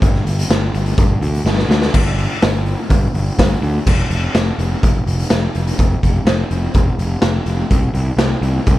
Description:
classic rock; 125 BPM; 4/4; straight; A4 = 440 Hz
fuzz picked electric bass; bass; 0.0-8.8 s; F1 to D2; -18 LUFS; equal; overdrive
raw garage drum kit; drums; 0.0-8.8 s; crash cymbal, hi-hat, kick drum, snare drum; -16 LUFS; equal
little or no reverb; -14 LUFS; side -15 dB against mid
0.0-1.9 A section; 1.9-3.9 B section; 3.9-8.8 C section
drum fill 1.5-1.9
| 0.02 0.50 0.98 1.46 | 1.94 2.42 2.90 3.38 | 3.87 4.35 4.83 5.31 | 5.79 6.27 6.75 7.23 | 7.71 8.19 8.67

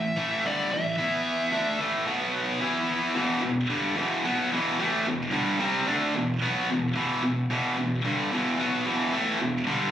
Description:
metal; 111 BPM; 4/4; straight; E minor; A4 = 442 Hz
high-gain lead guitar; melody; 0.0-1.8 s; D5 to E5; -30 LUFS; equal; distortion, ping-pong delay
high-gain distorted guitar; riff; 0.0-9.9 s; E2 to E4; -24 LUFS; equal; distortion
light reverb; recorded on a phone in the room, club reverb, compression; -24 LUFS; side -10 dB against mid
0.0-3.2 A section; 3.2-9.9 B section
half time 3.2-9.9
0.0 A5; 1.0 E5; 1.5 A5; 2.1 B5; 2.6 E5; 3.2 Em
0.45 | 0.99 1.53 2.08 2.62 | 3.16 3.71 4.25 4.79 | 5.33 5.87 6.42 6.96 | 7.50 8.04 8.59 9.13 | 9.67

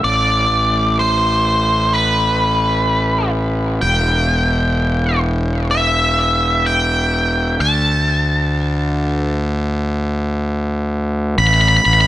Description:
post-rock; 63 BPM; 4/4; straight; A minor; A4 = 439 Hz
octave-fuzz lead guitar; melody; 0.0-12.1 s; B4 to B5; -16 LUFS; equal; distortion, tape echo
fuzz fingered electric bass; bass; 0.0-12.1 s; E1 to D2; -17 LUFS; equal; overdrive
light reverb; -14 LUFS; side -14 dB against mid
0.0-11.4 A section
0.0 Amadd9; 3.8 Em; 7.6 D5; 11.4 Asus2
| 0.04 0.99 1.93 2.88 | 3.82 4.77 5.72 6.66 | 7.61 8.56 9.50 10.45 | 11.39

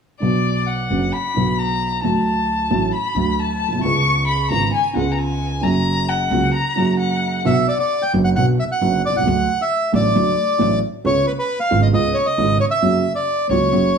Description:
tango; 133 BPM; 4/4; rubato; A4 = 440 Hz
warm violin; second line; 0.2-7.4 s; D5 to C#6; -21 LUFS; left 4 dB; tape echo
dark upright piano; accompaniment; 0.2-13.9 s; F#1 to F#4; -20 LUFS; right 2 dB
upright bass; bass; 0.2-13.9 s; F#1 to D2; -24 LUFS; right 1 dB
bandoneon; melody; 7.5-14.0 s; B4 to G5; -18 LUFS; equal; plate reverb
moderate large studio reverb, RT60 0.9 s; studio ambience; -16 LUFS; side -6 dB against mid
0.2-7.5 A section; 7.5-14.0 B section
0.2 Bm; 2.0 D; 3.8 C#7; 5.6 F#; 7.5 Bm; 9.3 D; 11.0 C#7; 12.8 F#
| 0.22 0.67 1.13 1.58 | 2.04 2.48 2.93 3.38 | 3.83 4.28 4.73 5.18 | 5.63 6.08 6.54 7.00 | 7.46 7.91 8.36 8.81 | 9.26 9.71 10.15 10.60 | 11.04 11.49 11.94 12.38 | 12.83 13.28 13.72

